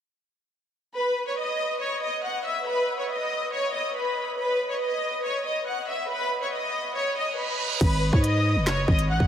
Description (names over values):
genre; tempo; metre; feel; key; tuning
hip hop, drill; 140 BPM; 4/4; half-time; unclear; A4 = 440 Hz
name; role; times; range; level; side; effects
warm studio violin section; melody; 1.0-9.3 s; B4 to F#6; -25 LUFS; equal; analog delay
reverse cymbal; sound effects; 7.2-7.8 s; none; -34 LUFS; right 7 dB; none
growling 808-style bass; bass; 7.8-9.3 s; F#1 to G#2; -23 LUFS; equal; none
drill drum kit; drums; 7.8-9.3 s; crash cymbal, handclaps, hi-hat, kick drum, snare drum; -23 LUFS; equal; none
room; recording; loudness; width
wet cathedral reverb, RT60 7.0 s; dreamy mix soaked in reverb; -24 LUFS; side -9 dB against mid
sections
1.0-7.8 A section; 7.8-9.3 B section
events
reverse cymbal 7.2-7.8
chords
1.0 Badd9; 7.8 G#m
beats
| 0.95 1.38 1.81 2.24 | 2.67 3.10 3.52 3.95 | 4.38 4.81 5.24 5.67 | 6.09 6.52 6.95 7.38 | 7.81 8.24 8.67 9.10